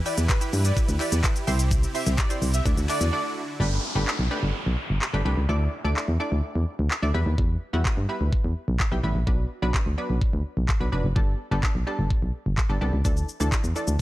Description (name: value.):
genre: dance-pop.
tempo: 127 BPM.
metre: 4/4.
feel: straight.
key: G major.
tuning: A4 = 438 Hz.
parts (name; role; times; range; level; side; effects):
supersaw chords; sustained chords; 0.0-3.6 s; C3 to B4; -34 LUFS; right 1 dB; sidechain pumping.
airy dreamy lead; melody; 0.1-3.2 s; B4 to E5; -32 LUFS; equal; chorus, analog delay.
punchy chord stab; accompaniment; 0.1-14.0 s; E3 to D5; -31 LUFS; right 1 dB; chorus, sidechain pumping.
pop drum kit; drums; 0.1-14.0 s; handclaps, hi-hat, kick drum, shaker; -25 LUFS; equal; none.
solid FM bass; bass; 0.2-14.0 s; F1 to G2; -24 LUFS; equal; sidechain pumping.
group handclap; percussion; 0.3-3.0 s; none; -36 LUFS; left 3 dB; none.
downlifter; sound effects; 3.6-7.4 s; none; -34 LUFS; equal; none.
room: little or no reverb.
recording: dry, gritty hardware recording, transformer saturation.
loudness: -22 LUFS.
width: side -16 dB against mid.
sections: 0.0-3.6 A section; 3.6-14.0 B section.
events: drop 0.0-3.6; break 3.1-3.6.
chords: 0.0 Em; 1.5 C; 2.7 Dadd9; 3.6 Gadd9; 5.5 Dsus2; 7.1 Em; 9.3 Bm; 11.2 Gadd9; 13.1 Dsus2.